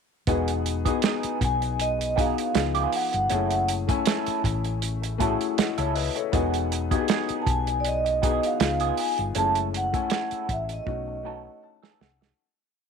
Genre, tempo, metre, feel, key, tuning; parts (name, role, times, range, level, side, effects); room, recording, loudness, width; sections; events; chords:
lush 1970s-style soul; 79 BPM; 4/4; swing 54% on 16ths; E major; A4 = 440 Hz
warm concert grand piano; accompaniment; 0.3-12.4 s; E#3 to A5; -29 LUFS; left 15 dB
electric guitar through a small old amp; riff; 0.3-12.3 s; B3 to A4; -32 LUFS; right 14 dB; wah
hollow-body short-scale fingered electric bass; bass; 0.3-12.3 s; E1 to C#2; -30 LUFS; left 1 dB
warm soul drum kit; drums; 0.3-12.4 s; hi-hat, kick drum, snare drum; -27 LUFS; right 4 dB
vibraphone with soft mallets; melody; 1.4-11.6 s; D5 to A5; -26 LUFS; right 2 dB; slapback echo
light reverb, small room ambience; 1960s-style stereo with parts hard left and right; -23 LUFS; side -6 dB against mid
0.3-12.4 verse
fade-out 9.4-12.4; drum fill 10.9-12.4; grand piano fill 11.2-12.4
0.3 Emaj7; 2.6 C#7; 3.3 F#m7; 6.3 Emaj7; 8.6 C#7; 9.4 F#m7; 10.9 B7